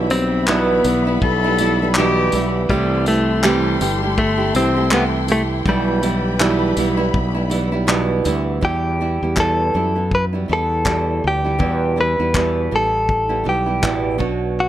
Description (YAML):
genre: acoustic pop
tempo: 81 BPM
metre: 4/4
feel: swing 60% on 16ths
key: E minor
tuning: A4 = 437 Hz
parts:
  - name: nylon-string guitar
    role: accompaniment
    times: 0.0-14.7 s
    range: E2 to G4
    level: -21 LUFS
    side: right 4 dB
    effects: none
  - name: warm studio string section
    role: sustained chords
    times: 0.0-8.6 s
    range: E4 to C6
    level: -28 LUFS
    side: left 4 dB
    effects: none
  - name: fretless electric bass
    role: bass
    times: 0.0-14.7 s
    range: G1 to F#2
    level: -22 LUFS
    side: left 1 dB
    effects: none
  - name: direct-recorded clean electric guitar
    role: melody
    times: 0.1-14.7 s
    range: G3 to B4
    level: -20 LUFS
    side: left 1 dB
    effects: plate reverb
  - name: cloth-damped thuddy drum kit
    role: drums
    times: 0.1-14.4 s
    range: handclaps, kick drum, tambourine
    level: -22 LUFS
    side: left 1 dB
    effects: none
  - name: dark cello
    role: second line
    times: 1.2-2.5 s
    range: G4 to A4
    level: -20 LUFS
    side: left 4 dB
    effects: none
room: light reverb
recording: none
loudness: -15 LUFS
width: side -12 dB against mid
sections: 0.0-8.6 A section; 8.6-14.7 B section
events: none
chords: 0.0 Em/B; 2.7 C6; 5.7 Em/B; 8.6 Em